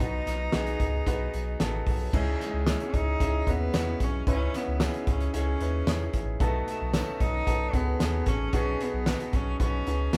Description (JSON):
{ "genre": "piano-driven pop", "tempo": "112 BPM", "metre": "4/4", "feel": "straight", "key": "unclear", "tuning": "A4 = 442 Hz", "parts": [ { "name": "bright cello", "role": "melody", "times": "0.0-10.2 s", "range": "G#3 to D#4", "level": "-36 LUFS", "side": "equal", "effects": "none" }, { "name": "bright grand piano", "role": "accompaniment", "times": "0.0-10.2 s", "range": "B2 to B4", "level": "-35 LUFS", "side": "equal", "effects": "none" }, { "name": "warm sub bass", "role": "bass", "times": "0.0-10.2 s", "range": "A1 to E2", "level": "-33 LUFS", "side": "equal", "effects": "none" }, { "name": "loose indie drum kit", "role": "drums", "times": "0.0-10.2 s", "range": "crash cymbal, hi-hat, kick drum, snare drum", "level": "-32 LUFS", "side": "equal", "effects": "none" }, { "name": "tambourine", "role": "percussion", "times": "2.7-10.2 s", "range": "none", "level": "-52 LUFS", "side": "equal", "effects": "none" } ], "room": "moderate studio ambience, RT60 0.5 s", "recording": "band playing live in one room", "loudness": "-28 LUFS", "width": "mono", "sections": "0.0-2.1 A section; 2.1-10.2 B section", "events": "none", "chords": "0.0 B; 2.1 C#madd9; 6.4 B7" }